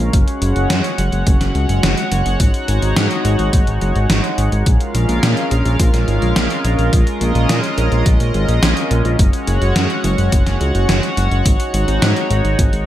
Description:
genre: synthwave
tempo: 106 BPM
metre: 4/4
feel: straight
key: Bb minor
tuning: A4 = 440 Hz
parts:
  - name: chorused pulse-width pad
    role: sustained chords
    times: 0.0-12.9 s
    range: Ab3 to Gb5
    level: -20 LUFS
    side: equal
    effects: sidechain pumping
  - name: fat analog bass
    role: bass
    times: 0.0-12.8 s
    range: Gb1 to Bb2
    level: -16 LUFS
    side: equal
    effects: none
  - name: electronic kick drum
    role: drums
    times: 0.1-12.7 s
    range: none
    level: -14 LUFS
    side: equal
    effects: overdrive
  - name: gated 80s digital drum machine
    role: drums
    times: 0.1-12.8 s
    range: hi-hat, snare drum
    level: -20 LUFS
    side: equal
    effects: gated reverb, gated reverb snare, overdrive
room: digital ambience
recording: none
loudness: -13 LUFS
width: side -12 dB against mid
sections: 0.0-12.9 A section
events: none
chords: 0.1 Gbsus2; 2.4 Ab7sus4; 4.7 Bbm7; 9.2 Gbsus2; 11.5 Ab7sus4

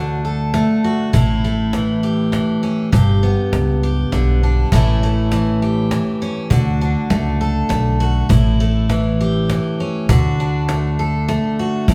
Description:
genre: honky-tonk and classic country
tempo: 100 BPM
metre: 3/4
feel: straight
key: D major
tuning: A4 = 439 Hz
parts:
  - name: picked steel-string acoustic guitar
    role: accompaniment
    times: 0.0-11.9 s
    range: G2 to A4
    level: -21 LUFS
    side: equal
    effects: none
  - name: upright bass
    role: bass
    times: 0.0-11.9 s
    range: G1 to D2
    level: -20 LUFS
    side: equal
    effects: none
  - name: cajon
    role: drums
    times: 0.5-11.9 s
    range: none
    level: -21 LUFS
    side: equal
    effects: none
room: wet large studio reverb, RT60 1.2 s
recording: band playing live in one room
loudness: -17 LUFS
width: mono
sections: 0.0-11.9 A section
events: none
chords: 0.0 D; 1.1 A; 2.9 G; 4.7 A; 6.5 D; 8.3 A; 10.1 D

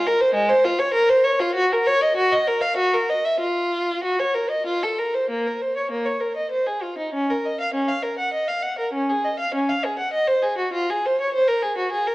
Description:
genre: classical, baroque-style suite movement for unaccompanied violin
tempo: 98 BPM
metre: 3/4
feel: uneven beats, rubato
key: Bb minor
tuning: A4 = 440 Hz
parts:
  - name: warm violin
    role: solo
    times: 0.0-12.1 s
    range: Ab3 to Gb5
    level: -19 LUFS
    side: equal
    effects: none
room: wet recital hall reverb, RT60 1.6 s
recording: worn, warbling old tape, cassette tape, warbly pitch drift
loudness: -19 LUFS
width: side -19 dB against mid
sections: 0.0-5.3 A section; 5.3-12.1 A section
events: none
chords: none

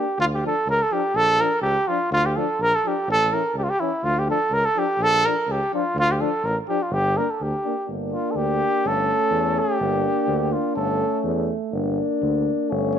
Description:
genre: balkan folk, Balkan brass band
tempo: 125 BPM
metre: 2/4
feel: swing 54% on 16ths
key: G dorian sharp4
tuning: A4 = 440 Hz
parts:
  - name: dark trumpet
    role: melody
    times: 0.0-13.0 s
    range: E4 to C#5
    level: -21 LUFS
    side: right 1 dB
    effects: none
  - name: clear euphonium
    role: accompaniment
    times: 0.0-13.0 s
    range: C#4 to D4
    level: -28 LUFS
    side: left 12 dB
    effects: none
  - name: warm euphonium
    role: accompaniment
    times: 0.0-13.0 s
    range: E3 to Bb3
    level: -30 LUFS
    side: right 13 dB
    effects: none
  - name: warm tuba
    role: bass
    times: 0.2-13.0 s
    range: G1 to E2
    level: -27 LUFS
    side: equal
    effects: none
room: moderate echo chamber reverb, RT60 1.9 s, small room ambience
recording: 1960s-style stereo with parts hard left and right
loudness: -20 LUFS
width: side -8 dB against mid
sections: 0.2-7.9 A section; 7.9-13.0 B section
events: trumpet solo 7.9-13.0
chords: 0.2 Dm; 1.2 Bb; 2.1 Dm; 3.1 A; 4.0 Dm; 5.0 Bb; 6.0 Dm; 6.9 Gm; 8.8 A/G; 9.8 Gm; 10.8 A/G; 11.7 Gm

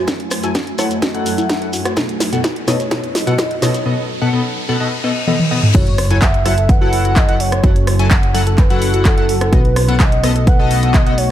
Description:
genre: progressive house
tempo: 127 BPM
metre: 4/4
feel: straight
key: F# dorian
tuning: A4 = 441 Hz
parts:
  - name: warm velvety synth lead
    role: melody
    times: 0.0-11.3 s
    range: A4 to F#5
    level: -22 LUFS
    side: equal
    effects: chorus, digital delay
  - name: shimmering ambient pad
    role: sustained chords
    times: 0.0-11.3 s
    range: F#2 to G#5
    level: -26 LUFS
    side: equal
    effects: chorus, built-in reverb, sidechain pumping
  - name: soft round pluck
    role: arpeggios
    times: 0.0-11.2 s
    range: E4 to F#5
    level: -24 LUFS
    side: right 1 dB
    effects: chorus, sidechain pumping, digital delay
  - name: riser, reverse cymbal and sub drop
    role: sound effects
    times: 2.3-7.6 s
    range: none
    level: -27 LUFS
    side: left 1 dB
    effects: none
  - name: chorused polysynth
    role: stabs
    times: 0.1-11.1 s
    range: B2 to G#5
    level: -20 LUFS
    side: left 2 dB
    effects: sidechain pumping, digital delay
  - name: electronic kick drum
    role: drums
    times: 0.1-11.0 s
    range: none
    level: -13 LUFS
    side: equal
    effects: overdrive, high-pass filter on kick, high-pass filter on room
  - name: house drum kit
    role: drums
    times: 0.1-11.3 s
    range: crash cymbal, handclaps, hi-hat, rim click, snare drum, toms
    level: -20 LUFS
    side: equal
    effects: overdrive
  - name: shekere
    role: percussion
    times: 0.1-3.8 s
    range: none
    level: -29 LUFS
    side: left 3 dB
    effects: none
  - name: plucky analog bass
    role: bass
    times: 5.7-11.3 s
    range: F#1 to B1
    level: -17 LUFS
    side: equal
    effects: sidechain pumping
room: light reverb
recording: none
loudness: -12 LUFS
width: side -11 dB against mid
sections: 0.0-5.7 A section; 5.7-11.3 B section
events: build-up 0.0-5.7; drum fill 0.0-3.9, 5.3-5.7; filter sweep on synth pluck 0.0-5.7; filter sweep on soft synth lead 0.0-5.7; riser 2.3-5.7; reverse cymbal 4.8-5.7; drop 5.7-11.3; impact 5.7-7.6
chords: 0.0 F#m7; 2.0 B7; 5.7 F#m7; 9.5 B7

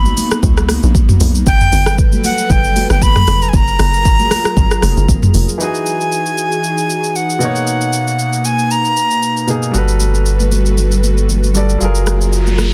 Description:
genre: amapiano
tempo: 116 BPM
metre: 4/4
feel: swing 55% on 16ths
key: unclear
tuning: A4 = 440 Hz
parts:
  - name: breathy bright jazz flute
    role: melody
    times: 0.0-9.5 s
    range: F#5 to B5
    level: -20 LUFS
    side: equal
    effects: tape echo
  - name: airy breathy pad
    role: sustained chords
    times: 0.0-12.7 s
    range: B2 to B4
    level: -24 LUFS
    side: equal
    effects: chorus, sidechain pumping
  - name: hollow log drum bass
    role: bass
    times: 0.0-5.5 s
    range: E#1 to C#2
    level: -17 LUFS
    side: equal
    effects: none
  - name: afro-pop drum kit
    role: drums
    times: 0.1-12.7 s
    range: hi-hat, kick drum, rim click, shaker, toms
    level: -18 LUFS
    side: equal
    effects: none
  - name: congas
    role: percussion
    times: 0.1-5.5, 10.0-12.7 s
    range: none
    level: -26 LUFS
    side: equal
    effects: none
  - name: clear baby grand piano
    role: accompaniment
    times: 5.6-12.7 s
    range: B2 to D5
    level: -22 LUFS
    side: equal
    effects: none
  - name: warm sub bass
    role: bass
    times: 9.7-12.7 s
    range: F#1 to G1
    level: -16 LUFS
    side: equal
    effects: none
  - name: noise sweep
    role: sound effects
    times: 12.2-12.7 s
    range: none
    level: -28 LUFS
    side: equal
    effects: none
room: little or no reverb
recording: dense, heavily limited modern master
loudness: -14 LUFS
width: mono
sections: 0.0-5.6 A section; 5.6-12.7 B section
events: drop 0.0-5.6; noise sweep 12.2-12.7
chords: 0.0 Bmaj9; 1.5 Gmaj9; 3.5 F#maj9; 5.6 Emaj9; 7.4 Bmaj9; 9.7 Gmaj9; 11.8 F#maj9

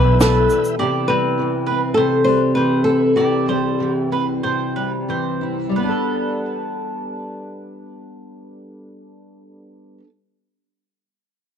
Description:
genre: acoustic pop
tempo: 87-103 BPM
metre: 4/4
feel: straight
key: G major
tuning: A4 = 439 Hz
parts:
  - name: flamenco guitar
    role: melody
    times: 0.0-5.0 s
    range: B3 to C5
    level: -19 LUFS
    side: left 2 dB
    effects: plate reverb, digital delay
  - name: fingerpicked steel-string acoustic guitar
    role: accompaniment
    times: 0.0-10.1 s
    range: B2 to A4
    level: -21 LUFS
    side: equal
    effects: double-tracked left and right, plate reverb
  - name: tonewheel organ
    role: sustained chords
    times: 0.0-0.8 s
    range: E4 to G5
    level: -31 LUFS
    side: equal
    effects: chorus vibrato, fast rotary speaker, plate reverb
  - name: mandolin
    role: arpeggios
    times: 0.0-7.8 s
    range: C4 to D5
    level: -26 LUFS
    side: right 7 dB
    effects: plate reverb, digital delay
  - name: upright bass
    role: bass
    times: 0.0-0.5 s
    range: B1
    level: -16 LUFS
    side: equal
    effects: none
  - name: shaker and snare drum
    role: drums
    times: 0.2-0.8 s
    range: none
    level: -22 LUFS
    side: right 1 dB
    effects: none
room: moderate studio reverb, RT60 0.6 s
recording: dark, warm production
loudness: -16 LUFS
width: side -8 dB against mid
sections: 0.8-5.8 A section; 5.8-8.5 B section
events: slowing down 0.8-5.8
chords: 0.0 G6; 0.8 C; 5.8 Gadd9

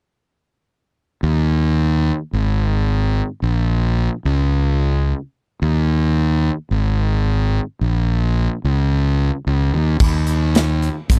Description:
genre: classic rock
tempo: 109 BPM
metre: 4/4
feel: straight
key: unclear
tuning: A4 = 439 Hz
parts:
  - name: fuzz fingered electric bass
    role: bass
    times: 1.2-11.2 s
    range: Ab1 to Eb2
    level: -18 LUFS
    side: equal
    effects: overdrive
  - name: big rock drum kit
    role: drums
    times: 10.0-11.2 s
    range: crash cymbal, hi-hat, kick drum, snare drum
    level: -19 LUFS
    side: equal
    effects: none
room: little or no reverb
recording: dry, close 1970s-style studio recording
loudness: -19 LUFS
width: mono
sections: 1.2-10.0 A section; 10.0-11.2 B section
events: none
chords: none

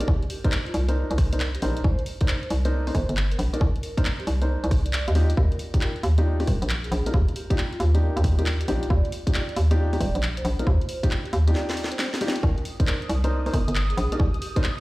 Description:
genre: UK garage, two-step garage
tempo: 136 BPM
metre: 4/4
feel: swing 66% on 16ths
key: C minor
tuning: A4 = 440 Hz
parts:
  - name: vibraphone with soft mallets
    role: melody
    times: 0.0-14.6 s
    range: F4 to Eb5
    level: -36 LUFS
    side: right 1 dB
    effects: digital delay
  - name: dark baby grand piano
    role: stabs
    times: 0.0-14.6 s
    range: D4 to D5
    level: -31 LUFS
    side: left 1 dB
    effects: digital delay
  - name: garage drum kit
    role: drums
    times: 0.0-14.8 s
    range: handclaps, hi-hat, rim click, snare drum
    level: -32 LUFS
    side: equal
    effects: none
  - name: hollow knocking FM bass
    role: bass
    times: 0.1-14.3 s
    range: Eb1 to Eb2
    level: -22 LUFS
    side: equal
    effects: none
  - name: electronic kick drum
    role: drums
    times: 0.1-14.6 s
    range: none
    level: -22 LUFS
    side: equal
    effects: none
  - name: ethereal airy pad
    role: sustained chords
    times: 12.7-14.8 s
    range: Eb6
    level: -36 LUFS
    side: right 1 dB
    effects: ensemble chorus, built-in reverb, sidechain pumping
room: digital ambience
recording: played on a big sound system in a bare room, large studio reverb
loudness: -21 LUFS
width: side -20 dB against mid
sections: 0.0-14.8 A section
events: break 11.6-12.4; drum fill 11.6-12.4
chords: 0.0 Cm9; 5.2 Ebmaj9; 12.4 Cm9

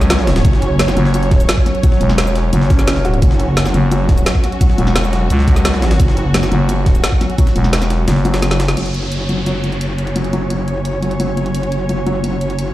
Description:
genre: dark technical drum and bass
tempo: 173 BPM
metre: 4/4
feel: straight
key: unclear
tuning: A4 = 440 Hz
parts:
  - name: dark studio string section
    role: sustained chords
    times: 0.0-12.7 s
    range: F#3 to C#5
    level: -22 LUFS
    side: right 1 dB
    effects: sidechain pumping, low-pass filter
  - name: felt-muted upright piano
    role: arpeggios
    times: 0.0-12.3 s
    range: F#3 to F#4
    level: -21 LUFS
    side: left 2 dB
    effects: sidechain pumping, dub echo
  - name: growling FM bass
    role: bass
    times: 0.0-8.8 s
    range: E1 to C#2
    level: -14 LUFS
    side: equal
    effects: none
  - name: drum and bass drum kit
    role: drums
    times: 0.0-12.7 s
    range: hi-hat, shaker, snare drum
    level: -21 LUFS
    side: right 1 dB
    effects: none
  - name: jungle sampler-style drum kit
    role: drums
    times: 0.1-8.8 s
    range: hi-hat, snare drum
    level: -27 LUFS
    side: right 1 dB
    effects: high-pass filter on hats, high-pass filter on snare
  - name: metallic wobble bass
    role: bass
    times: 0.4-1.0, 3.2-3.7, 6.0-6.5, 8.8-12.7 s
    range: F#1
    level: -18 LUFS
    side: equal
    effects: chorus, tube saturation, sidechain pumping
  - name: electronic kick drum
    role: drums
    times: 0.4-7.5 s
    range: none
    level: -12 LUFS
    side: equal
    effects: none
  - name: downlifter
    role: sound effects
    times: 8.8-11.5 s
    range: none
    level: -29 LUFS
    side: equal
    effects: none
room: digital ambience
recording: played on a big sound system in a bare room, large studio reverb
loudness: -12 LUFS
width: side -15 dB against mid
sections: 0.0-8.8 A section; 8.8-12.7 B section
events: drop 0.0-8.8; kick drops out 8.1-8.8; drum fill 8.4-8.8; band accent 8.7; filter sweep on string section 8.8-12.7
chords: 0.0 F#5

